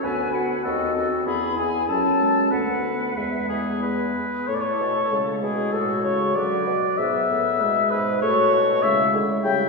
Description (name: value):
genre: quick classical-period movement for wind quintet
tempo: 97 BPM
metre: 2/4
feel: rubato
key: A major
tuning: A4 = 440 Hz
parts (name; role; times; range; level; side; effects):
- silver concert flute; melody; 0.0-9.7 s; E4 to B5; -28 LUFS; left 6 dB; none
- warm oboe; second line; 0.0-9.7 s; G#4 to G5; -23 LUFS; left 3 dB; none
- clear clarinet; accompaniment; 0.0-9.7 s; B3 to G#4; -28 LUFS; right 2 dB; none
- mellow French horn; accompaniment; 0.0-9.7 s; F#3 to B#3; -30 LUFS; right 1 dB; none
- mellow bassoon; bass; 0.0-9.6 s; D2 to D3; -28 LUFS; right 1 dB; none
room: wet concert hall reverb, RT60 2.2 s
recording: recorded in a church or concert hall, small room ambience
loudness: -20 LUFS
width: side -2 dB against mid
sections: 0.0-4.5 A section; 4.5-9.7 B section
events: none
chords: 0.0 Bm/D; 0.6 D#dim7; 1.3 E; 1.9 F#m; 2.5 Bm7/D; 3.2 E; 4.5 A; 5.7 Bm7/A; 7.0 E/G#; 8.2 A